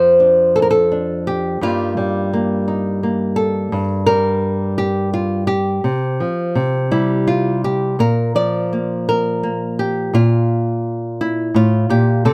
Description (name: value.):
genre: folk, solo fingerstyle acoustic guitar.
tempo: 85 BPM.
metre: 3/4.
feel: straight.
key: unclear.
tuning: A4 = 439 Hz.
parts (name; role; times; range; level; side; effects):
nylon-string guitar; solo; 0.0-12.3 s; F2 to D5; -17 LUFS; equal; none.
room: little or no reverb.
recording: close, detailed microphones.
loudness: -18 LUFS.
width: mono.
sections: 0.0-12.3 A section.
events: none.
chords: 0.0 F6; 1.6 Ebadd9/G; 3.7 Gm; 5.8 Csus4; 6.5 C; 8.0 Bb; 10.1 Gm13.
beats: 0.20 0.91 | 1.62 2.32 3.02 | 3.72 4.42 5.13 | 5.83 6.54 7.26 | 7.99 8.70 9.42 | 10.13 10.84 11.54 | 12.24.